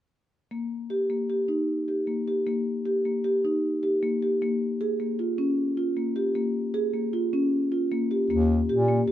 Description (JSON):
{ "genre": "contemporary instrumental, chamber music in an uneven meter", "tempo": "154 BPM", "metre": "5/4", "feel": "straight", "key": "Eb mixolydian", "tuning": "A4 = 440 Hz", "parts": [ { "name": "marimba with soft mallets", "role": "arpeggios", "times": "0.5-9.1 s", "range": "Bb3 to Ab4", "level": "-24 LUFS", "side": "equal", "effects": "none" }, { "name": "warm bass clarinet", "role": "bass", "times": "8.3-9.1 s", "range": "Eb2 to Bb2", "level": "-24 LUFS", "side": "right 1 dB", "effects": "none" } ], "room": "moderate studio reverb, RT60 0.8 s", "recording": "none", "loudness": "-24 LUFS", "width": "side -12 dB against mid", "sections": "0.5-8.3 A section", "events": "none", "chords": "0.5 Eb; 4.4 Db6; 8.3 Eb" }